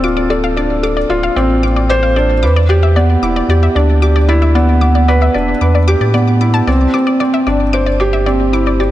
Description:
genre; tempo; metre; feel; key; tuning
piano and strings electronica; 113 BPM; 4/4; straight; unclear; A4 = 440 Hz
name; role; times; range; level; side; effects
wide unison pluck; arpeggios; 0.0-8.9 s; D5 to D6; -20 LUFS; left 3 dB; digital delay
felt-muted upright piano; riff; 0.0-8.9 s; B3 to C5; -14 LUFS; right 1 dB; digital delay
warm sub bass; bass; 0.0-8.9 s; D1 to A2; -13 LUFS; equal; none
room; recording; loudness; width
light reverb, digital ambience; none; -10 LUFS; side -14 dB against mid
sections
0.0-8.9 A section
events
none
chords
0.0 Dm7; 2.4 Em7; 6.7 Cadd9

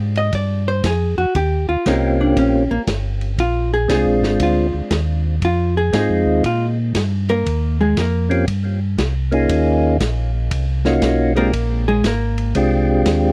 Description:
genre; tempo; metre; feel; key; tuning
soul jazz organ trio; 118 BPM; 4/4; swing 67% on 8ths; unclear; A4 = 439 Hz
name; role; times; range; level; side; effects
mellow tonewheel organ; bass; 0.0-13.3 s; G1 to Bb2; -22 LUFS; equal; slow rotary speaker
vintage hollow-body jazz guitar; accompaniment; 0.2-12.5 s; Ab3 to Eb5; -22 LUFS; equal; none
vintage drum kit; drums; 0.2-13.2 s; hi-hat, kick drum, ride cymbal, snare drum; -27 LUFS; equal; none
percussive tonewheel organ; melody; 1.9-13.3 s; Ab3 to Ab4; -22 LUFS; equal; slow rotary speaker, tape echo
room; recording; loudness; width
little or no reverb; dry, close 1970s-style studio recording; -18 LUFS; mono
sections
0.0-13.3 A section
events
hollow-body jazz guitar solo 0.0-13.3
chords
0.0 Bb13 (rootless); 1.3 Eb13; 3.4 Bb9; 5.4 Fm7; 6.4 Gm7; 7.5 Eb13; 9.5 Ebm7; 11.5 Bb13

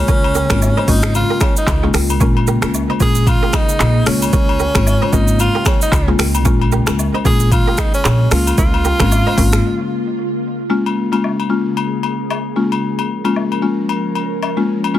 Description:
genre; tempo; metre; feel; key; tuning
afrobeats; 113 BPM; 4/4; swing 58% on 16ths; unclear; A4 = 441 Hz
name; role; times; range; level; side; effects
breathy tenor saxophone; melody; 0.0-10.1 s; Db4 to Ab4; -20 LUFS; equal; tape echo
ethereal airy pad; sustained chords; 0.0-15.0 s; Db3 to Bb4; -25 LUFS; equal; ensemble chorus, built-in reverb
upright bass; bass; 0.0-9.6 s; Ab1 to Db2; -17 LUFS; equal; none
kora; riff; 0.1-9.5 s; F4 to Eb5; -26 LUFS; right 9 dB; tape echo
afro-pop drum kit; drums; 0.1-9.6 s; finger snaps, handclaps, hi-hat, kick drum, rim click, shaker; -16 LUFS; equal; overdrive, soft clipping on snare
agogo bells and woodblock; percussion; 0.2-14.9 s; none; -25 LUFS; left 9 dB; none
buzzing marimba with medium mallets; accompaniment; 0.5-15.0 s; Ab3 to F4; -20 LUFS; left 3 dB; none
room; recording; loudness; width
little or no reverb; dense, heavily limited modern master; -13 LUFS; side -13 dB against mid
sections
0.0-10.7 A section; 10.7-15.0 B section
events
break 9.6-10.7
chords
0.0 Db6; 2.2 Bbm7; 4.1 Db6; 6.5 Bbm7; 8.3 Db6; 10.7 Bbm7; 12.6 Db6

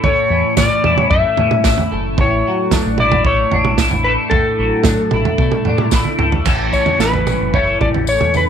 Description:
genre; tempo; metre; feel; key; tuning
psychedelic rock; 112 BPM; 4/4; straight; A major; A4 = 444 Hz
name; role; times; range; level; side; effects
electric slide guitar; melody; 0.0-8.4 s; A4 to E5; -17 LUFS; left 2 dB; tape echo
twelve-string electric guitar; riff; 0.0-8.5 s; A2 to A4; -18 LUFS; left 1 dB; phaser, double-tracked left and right
crunchy breakbeat drum kit; drums; 0.0-8.5 s; crash cymbal, kick drum, snare drum, toms; -18 LUFS; right 3 dB; none
deep dub fingered electric bass; bass; 0.3-8.4 s; F#1 to B2; -20 LUFS; left 1 dB; none
tambourine; percussion; 0.6-8.5 s; none; -29 LUFS; left 21 dB; none
room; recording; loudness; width
light reverb, small room reverb; 1960s-style stereo; -13 LUFS; side -8 dB against mid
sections
0.0-6.5 A section; 6.5-8.5 B section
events
drum fill 5.9-6.5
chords
0.0 A; 2.2 Dadd9/A; 6.5 A

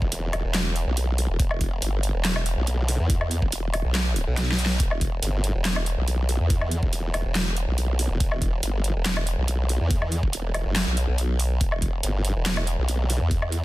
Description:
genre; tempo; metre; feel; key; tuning
heavy wobble dubstep; 141 BPM; 4/4; half-time; E minor; A4 = 440 Hz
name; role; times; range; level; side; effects
formant-sweep wobble bass; bass; 0.0-13.6 s; E1 to E2; -24 LUFS; equal; chorus, overdrive
electronic kick drum; drums; 0.0-13.4 s; none; -24 LUFS; equal; none
big-room dance drum kit; drums; 0.1-13.6 s; handclaps, hi-hat, snare drum, woodblock; -28 LUFS; equal; none
room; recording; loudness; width
little or no reverb; dense, heavily limited modern master; -22 LUFS; side -17 dB against mid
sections
0.0-13.6 A section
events
drum fill 4.4-4.8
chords
none

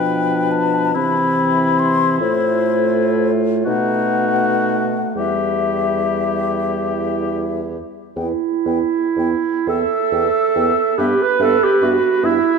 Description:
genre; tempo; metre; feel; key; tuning
classical, slow romantic movement for wind quintet; 38-49 BPM (dotted quarters); 6/8; rubato; E minor; A4 = 441 Hz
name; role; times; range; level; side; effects
mellow hollow concert flute; melody; 0.0-12.3 s; C5 to C6; -22 LUFS; left 8 dB; none
warm oboe; second line; 0.0-12.6 s; E4 to E5; -25 LUFS; left 4 dB; none
mellow clarinet; accompaniment; 0.0-12.6 s; C4 to B4; -19 LUFS; right 6 dB; none
warm French horn; accompaniment; 0.0-12.4 s; E3 to B3; -24 LUFS; equal; none
mellow bassoon; bass; 0.0-12.4 s; E2 to C3; -24 LUFS; equal; none
room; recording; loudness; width
wet scoring stage reverb, RT60 2.1 s; dark, warm production; -15 LUFS; side -5 dB against mid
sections
0.0-8.2 A section; 8.2-12.6 A section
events
none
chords
0.0 G7/B; 1.0 C; 2.2 F/A; 3.7 B7; 5.2 Em; 11.0 Em/G

